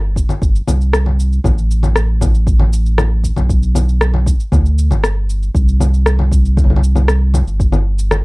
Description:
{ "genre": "folktronica", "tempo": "117 BPM", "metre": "4/4", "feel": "straight", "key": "unclear", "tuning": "A4 = 440 Hz", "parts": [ { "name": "warm sub bass", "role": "bass", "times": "0.0-8.2 s", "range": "G1 to D2", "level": "-13 LUFS", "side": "equal", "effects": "none" }, { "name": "electronic kick drum", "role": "drums", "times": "0.2-7.7 s", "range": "none", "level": "-15 LUFS", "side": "equal", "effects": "none" }, { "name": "electronic shaker, congas and rim click", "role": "drums", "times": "0.2-8.2 s", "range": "none", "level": "-18 LUFS", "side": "left 2 dB", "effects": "none" } ], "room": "little or no reverb", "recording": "dry, close 1970s-style studio recording", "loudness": "-11 LUFS", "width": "side -24 dB against mid", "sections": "0.0-8.2 A section", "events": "none", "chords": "none" }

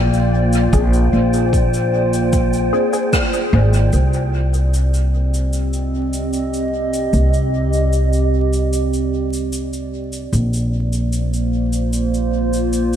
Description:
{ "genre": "ambient dub", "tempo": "75 BPM", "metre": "4/4", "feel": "straight", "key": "C minor", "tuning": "A4 = 440 Hz", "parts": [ { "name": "warbly tape-like pad", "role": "sustained chords", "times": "0.0-13.0 s", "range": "Bb3 to Eb5", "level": "-20 LUFS", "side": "right 1 dB", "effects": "chorus, built-in reverb" }, { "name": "upright bass", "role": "bass", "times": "0.0-13.0 s", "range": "Ab1 to C2", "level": "-17 LUFS", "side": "equal", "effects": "none" }, { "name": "wind-like tuned noise texture", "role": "texture", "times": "0.0-3.9 s", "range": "G5", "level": "-31 LUFS", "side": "right 2 dB", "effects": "built-in reverb" }, { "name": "cabasa and rim click", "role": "drums", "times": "0.1-13.0 s", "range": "none", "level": "-27 LUFS", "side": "equal", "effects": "dub echo" }, { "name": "filtered dub chord stab", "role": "stabs", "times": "0.7-10.6 s", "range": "C4 to Bb4", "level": "-26 LUFS", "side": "left 4 dB", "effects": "phaser, analog chorus, dub echo" }, { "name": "electronic kick drum", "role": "drums", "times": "0.7-3.3 s", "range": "none", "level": "-19 LUFS", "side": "equal", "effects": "none" } ], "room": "light reverb, studio ambience", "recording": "vinyl crackle", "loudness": "-15 LUFS", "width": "side -10 dB against mid", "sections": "0.0-3.9 A section; 3.9-13.0 B section", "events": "band accent 3.1-3.5", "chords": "0.0 Bb9; 3.9 Cm9; 10.3 Bbadd9" }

